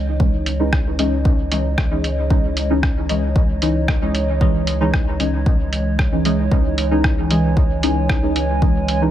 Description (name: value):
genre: dub techno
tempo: 114 BPM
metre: 4/4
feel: straight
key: C# minor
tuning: A4 = 438 Hz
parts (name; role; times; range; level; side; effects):
- warbly tape-like pad; sustained chords; 0.0-9.1 s; E3 to G#5; -24 LUFS; right 2 dB; chorus, built-in reverb, sidechain pumping
- soft dub sub bass; bass; 0.0-9.1 s; C#2; -22 LUFS; equal; sidechain pumping
- deep mellow chord stab; stabs; 0.2-9.1 s; E3 to D#4; -21 LUFS; equal; chorus, phaser, sidechain pumping, dub echo
- electronic kick drum; drums; 0.2-8.7 s; none; -18 LUFS; equal; small room ambience
- lo-fi sampler-style drum kit; drums; 0.5-9.0 s; hi-hat, rim click; -25 LUFS; equal; small room ambience
room: little or no reverb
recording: none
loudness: -16 LUFS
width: side -12 dB against mid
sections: 0.0-9.1 A section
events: none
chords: 0.0 C#madd9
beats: | 0.20 0.73 1.25 1.78 | 2.31 2.83 3.36 3.88 | 4.41 4.94 5.46 5.99 | 6.51 7.04 7.57 8.09 | 8.62